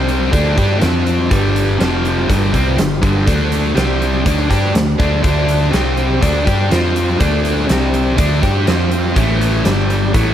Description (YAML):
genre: blues rock power trio and southern rock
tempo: 122 BPM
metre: 4/4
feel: straight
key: unclear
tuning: A4 = 440 Hz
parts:
  - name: bright tonewheel organ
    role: sustained chords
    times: 0.0-10.3 s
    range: G3 to C#5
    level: -26 LUFS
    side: right 2 dB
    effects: slow rotary speaker, overdrive, chorus vibrato
  - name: overdriven electric guitar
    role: riff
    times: 0.0-10.3 s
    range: F2 to G4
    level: -16 LUFS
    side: left 1 dB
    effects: none
  - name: vintage muted fingered electric bass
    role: bass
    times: 0.0-10.3 s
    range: F1 to G2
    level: -18 LUFS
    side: equal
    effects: none
  - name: huge arena drum kit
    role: drums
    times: 0.1-10.3 s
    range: hi-hat, kick drum, snare drum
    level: -18 LUFS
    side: equal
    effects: none
room: light reverb, small room ambience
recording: none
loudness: -12 LUFS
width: side -10 dB against mid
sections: 0.0-10.3 A section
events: none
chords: 0.3 D7; 0.8 F5; 1.3 G7; 1.8 F5; 2.3 G7; 3.3 D7; 3.8 C5; 4.3 D7; 5.7 C5; 6.2 D7; 6.7 F5; 7.2 D7; 7.7 C5; 8.2 D7; 8.7 F5; 9.2 A7; 9.7 G5